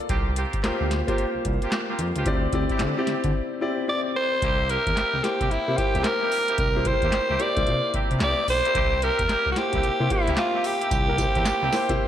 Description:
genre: R&B, new jack swing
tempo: 111 BPM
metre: 4/4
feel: swing 63% on 16ths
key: unclear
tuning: A4 = 440 Hz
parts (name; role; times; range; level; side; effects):
- warm grand piano; accompaniment; 0.0-12.1 s; Bb3 to D5; -28 LUFS; left 2 dB; slapback echo
- warm horn section; stabs; 0.1-11.8 s; Bb3 to G4; -32 LUFS; right 2 dB; slapback echo
- smooth gliding synth bass; bass; 0.1-12.0 s; B1 to D3; -28 LUFS; equal; none
- booming analog drum machine; drums; 0.1-12.1 s; handclaps, hi-hat, kick drum, snare drum, tambourine; -27 LUFS; equal; none
- raspy alto saxophone; melody; 3.9-12.1 s; E4 to D5; -23 LUFS; equal; ping-pong delay, slapback echo
room: wet lush hall reverb, RT60 1.7 s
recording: big arena sound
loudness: -21 LUFS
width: side -10 dB against mid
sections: 0.0-4.4 A section; 4.4-12.1 B section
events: silent gap 3.3-4.4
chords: 0.1 C7sus4; 2.3 D9sus4; 4.4 C7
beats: | 0.10 0.64 1.18 1.72 | 2.26 2.80 3.34 3.88 | 4.42 4.96 5.50 6.04 | 6.58 7.13 7.67 8.21 | 8.75 9.29 9.83 10.37 | 10.91 11.45 11.99

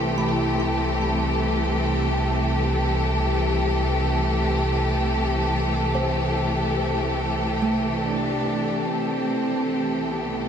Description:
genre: ambient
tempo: free time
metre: none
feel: none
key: C major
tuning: A4 = 440 Hz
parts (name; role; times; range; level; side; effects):
- warm studio string section; sustained chords; 0.0-10.5 s; C3 to A4; -22 LUFS; equal; none
- kalimba; arpeggios; 0.0-9.0 s; E3 to C6; -31 LUFS; right 1 dB; ping-pong delay
- round analog bass; bass; 0.0-10.5 s; C2; -28 LUFS; equal; none
- organ-like drone; drone; 0.0-9.0 s; C3 to G3; -41 LUFS; right 2 dB; none
- dark cello; melody; 8.0-10.5 s; B3 to D4; -27 LUFS; equal; ping-pong delay
room: wet huge ambient reverb, RT60 7.3 s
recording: dreamy mix soaked in reverb, faint mains hum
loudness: -21 LUFS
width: side -8 dB against mid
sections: 0.0-8.9 A section; 8.9-10.5 B section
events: none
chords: 0.0 C6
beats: free time

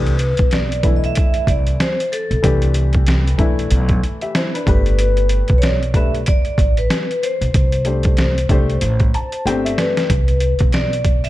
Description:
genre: hip hop, jazz-hop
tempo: 94 BPM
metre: 4/4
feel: swing 59% on 16ths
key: C major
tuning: A4 = 440 Hz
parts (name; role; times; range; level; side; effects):
- vibraphone with medium mallets; melody; 0.0-11.3 s; A4 to E5; -22 LUFS; left 1 dB; slapback echo
- dark upright piano; accompaniment; 0.0-10.1 s; E3 to A5; -23 LUFS; left 3 dB; none
- upright bass; bass; 0.0-11.3 s; G1 to C2; -18 LUFS; equal; none
- trip hop sampler-style drum kit; drums; 0.1-11.3 s; hi-hat, kick drum, snare drum; -17 LUFS; equal; overdrive
room: studio reverb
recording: dark, warm production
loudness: -14 LUFS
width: side -16 dB against mid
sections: 0.0-10.1 A section; 10.1-11.3 A section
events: upright piano fill 8.8-10.1; drum fill 9.5-10.1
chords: 0.0 Cmaj7; 4.7 Gadd9; 7.5 C5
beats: 0.52 1.16 1.80 | 2.44 3.07 3.71 4.35 | 4.99 5.63 6.27 6.90 | 7.54 8.18 8.82 9.46 | 10.10 10.73

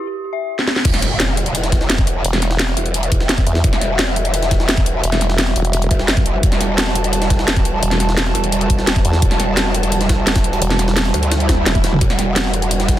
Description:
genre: dark technical drum and bass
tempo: 172 BPM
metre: 4/4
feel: straight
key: E minor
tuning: A4 = 440 Hz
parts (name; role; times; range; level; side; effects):
- drum and bass drum kit; drums; 0.6-13.0 s; crash cymbal, hi-hat, snare drum, toms; -19 LUFS; equal; none
- dark analog pad; sustained chords; 0.8-13.0 s; G3 to A5; -23 LUFS; right 2 dB; chorus, sidechain pumping
- growl bass; bass; 0.8-13.0 s; E1 to D2; -19 LUFS; equal; distortion, chorus, overdrive
- electronic kick drum; drums; 0.8-13.0 s; none; -16 LUFS; equal; none
- jungle sampler-style drum kit; drums; 0.8-13.0 s; hi-hat, snare drum; -26 LUFS; equal; high-pass filter on hats, high-pass filter on snare, high-pass filter on room
- impact and swell; sound effects; 0.8-2.2, 11.4-12.0 s; none; -25 LUFS; equal; none
- formant-sweep wobble bass; bass; 2.2-12.0 s; E1 to E2; -17 LUFS; equal; chorus, tube saturation
room: little or no reverb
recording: dense, heavily limited modern master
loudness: -14 LUFS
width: side -13 dB against mid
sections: 0.8-13.0 A section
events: break 0.0-0.8; drum fill 0.6, 11.5-12.0; drop 0.8-13.0; impact 0.8-2.2; swell 11.4-12.0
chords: 0.0 N.C.; 0.8 Emadd9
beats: 0.15 0.50 | 0.85 1.20 1.55 1.90 | 2.25 2.59 2.94 3.29 | 3.64 3.99 4.34 4.69 | 5.04 5.38 5.73 6.08 | 6.43 6.78 7.13 7.48 | 7.83 8.18 8.52 8.87 | 9.22 9.57 9.92 10.27 | 10.62 10.97 11.31 11.66 | 12.01 12.36 12.71

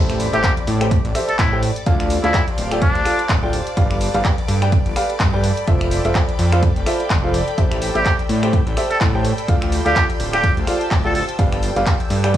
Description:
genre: piano house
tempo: 126 BPM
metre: 4/4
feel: swing 57% on 16ths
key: A minor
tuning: A4 = 440 Hz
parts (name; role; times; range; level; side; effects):
- string machine, violins; sustained chords; 0.0-12.4 s; D5 to E6; -32 LUFS; left 2 dB; ensemble chorus, sidechain pumping
- warm upright piano; riff; 0.0-12.3 s; F4 to G5; -23 LUFS; right 1 dB; sidechain pumping, analog delay
- fat analog bass; bass; 0.0-12.4 s; D1 to A2; -20 LUFS; equal; transformer saturation, sidechain pumping
- impact; sound effects; 0.0-1.9 s; none; -30 LUFS; equal; none
- airy breathy pad; texture; 0.0-12.4 s; F4 to B5; -28 LUFS; equal; chorus, sidechain pumping
- house drum kit; drums; 0.1-12.4 s; finger snaps, handclaps, hi-hat; -26 LUFS; equal; none
- trumpet with straight mute; melody; 0.3-3.3, 8.0-11.2 s; D4 to A4; -22 LUFS; equal; analog delay
- electronic kick drum; drums; 0.4-12.4 s; none; -19 LUFS; equal; none
room: digital ambience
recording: dry, gritty hardware recording, cassette tape, small room ambience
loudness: -15 LUFS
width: side -12 dB against mid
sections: 0.0-12.4 A section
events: impact 0.0-1.9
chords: 0.0 Am7; 1.9 Dm; 3.8 G7; 5.7 Fmaj7; 7.6 Am7; 9.5 Dm; 11.4 G7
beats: 0.44 0.91 1.39 | 1.86 2.34 2.82 3.29 | 3.77 4.25 4.72 5.20 | 5.67 6.15 6.63 7.10 | 7.58 8.06 8.53 9.01 | 9.48 9.96 10.44 10.91 | 11.39 11.87 12.34

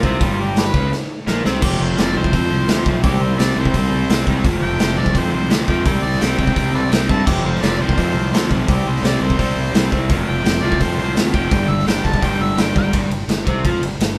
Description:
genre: garage rock duo or trio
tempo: 170 BPM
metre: 4/4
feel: straight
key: unclear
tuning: A4 = 439 Hz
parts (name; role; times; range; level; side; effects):
- overdriven harmonica; melody; 0.0-12.9 s; C4 to A5; -27 LUFS; equal; none
- crunchy overdriven guitar; riff; 0.0-14.2 s; F2 to F4; -23 LUFS; equal; none
- fuzz fingered electric bass; bass; 0.0-14.2 s; F1 to G2; -25 LUFS; equal; overdrive, tube saturation
- raw garage drum kit; drums; 0.0-14.1 s; crash cymbal, hi-hat, kick drum, ride cymbal, snare drum; -21 LUFS; equal; none
room: moderate studio reverb, RT60 0.7 s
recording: band playing live in one room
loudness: -17 LUFS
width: mono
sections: 0.0-1.6 A section; 1.6-12.9 B section; 12.9-14.2 C section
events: drum fill 0.9-1.6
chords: 0.0 G; 1.6 F5; 3.0 C5; 4.4 F5; 5.9 C5; 7.3 F5; 8.7 C5; 10.1 F5; 11.5 G5; 12.9 G7sus4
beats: | 0.20 0.56 0.91 1.26 | 1.62 1.97 2.33 2.68 | 3.03 3.39 3.74 4.09 | 4.45 4.80 5.15 5.51 | 5.86 6.21 6.56 6.92 | 7.27 7.62 7.97 8.33 | 8.68 9.03 9.39 9.74 | 10.09 10.45 10.80 11.15 | 11.51 11.86 12.22 12.57 | 12.93 13.29 13.64 14.00

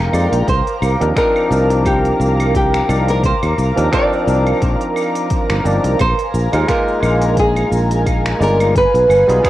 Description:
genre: sunset chillout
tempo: 87 BPM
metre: 4/4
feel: swing 56% on 16ths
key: C minor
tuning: A4 = 440 Hz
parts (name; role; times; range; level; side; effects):
- barky tine electric piano; accompaniment; 0.0-9.5 s; F3 to D5; -20 LUFS; equal; auto-pan, cassette tape
- airy breathy pad; sustained chords; 0.0-9.5 s; Bb4 to D6; -21 LUFS; right 1 dB; chorus, cassette tape
- sustaining fretless electric bass; bass; 0.0-9.4 s; G1 to F2; -17 LUFS; equal; none
- smooth R&B drum kit; drums; 0.1-9.5 s; cabasa, claves, finger snaps, hi-hat; -27 LUFS; equal; cassette tape
- nylon-string guitar; melody; 0.5-9.5 s; G4 to D5; -17 LUFS; equal; cassette tape
- electronic kick drum; drums; 0.5-9.5 s; none; -20 LUFS; equal; overdrive, cassette tape
room: light reverb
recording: home recording on cassette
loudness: -13 LUFS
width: side -14 dB against mid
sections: 0.0-9.5 A section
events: none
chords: 0.5 Cm11; 6.0 Bb7sus4; 8.8 G7b9b13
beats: | 0.48 1.17 1.86 2.55 | 3.23 3.92 4.61 5.30 | 5.99 6.68 7.37 8.06 | 8.75 9.44

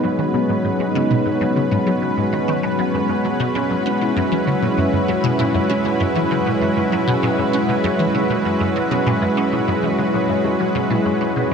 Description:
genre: ambient, sequencer-driven space music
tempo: 98 BPM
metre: 4/4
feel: straight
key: unclear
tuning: A4 = 440 Hz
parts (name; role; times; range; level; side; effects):
- lush unison pad; sustained chords; 0.0-11.5 s; G#3 to B4; -19 LUFS; right 1 dB; chorus
- concert harp; arpeggios; 0.0-11.5 s; F#3 to F#4; -22 LUFS; left 1 dB; auto-pan, low-pass filter, tape echo
- resonant blip pluck; riff; 0.0-11.5 s; F#2 to C#4; -23 LUFS; equal; phaser, ensemble chorus, tape echo
room: wet cathedral reverb, RT60 5.9 s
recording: in a vast, echoing space, faint mains hum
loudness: -16 LUFS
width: side -6 dB against mid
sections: 0.0-11.5 A section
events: filter sweep on harp 0.0-11.5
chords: 0.0 G#m7; 2.9 F#9sus4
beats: | 0.49 1.10 1.72 2.33 | 2.94 3.55 4.17 4.78 | 5.39 6.00 6.62 7.23 | 7.84 8.45 9.06 9.68 | 10.29 10.90 11.51

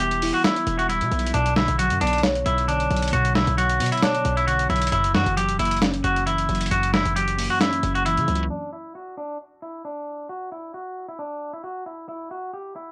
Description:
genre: hip hop, trap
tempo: 134 BPM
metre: 4/4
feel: half-time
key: unclear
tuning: A4 = 440 Hz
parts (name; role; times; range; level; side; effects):
- clean electric guitar; melody; 0.0-12.9 s; D4 to G4; -26 LUFS; equal; none
- muted felt-like synth keys; accompaniment; 0.0-8.5 s; F#2 to E5; -29 LUFS; equal; chorus
- hard-hitting 808-style bass; bass; 0.0-8.5 s; E1 to C#3; -29 LUFS; equal; none
- dusty soul sampler-style drum kit; drums; 0.0-8.5 s; hi-hat, snare drum; -28 LUFS; equal; overdrive, vintage 12-bit sampler grit
room: little or no reverb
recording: dry, gritty hardware recording, vinyl crackle, low-pass filter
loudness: -22 LUFS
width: mono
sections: 0.0-8.5 A section; 8.5-12.9 B section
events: none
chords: 0.0 Em; 1.3 Bmadd9; 4.9 F#7; 8.5 N.C.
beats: 0.00 0.44 0.89 | 1.34 1.79 2.23 2.68 | 3.13 3.58 4.03 4.47 | 4.92 5.37 5.82 6.26 | 6.71 7.16 7.61 8.06 | 8.50 8.95 9.40 9.85 | 10.29 10.74 11.19 11.64 | 12.09 12.53

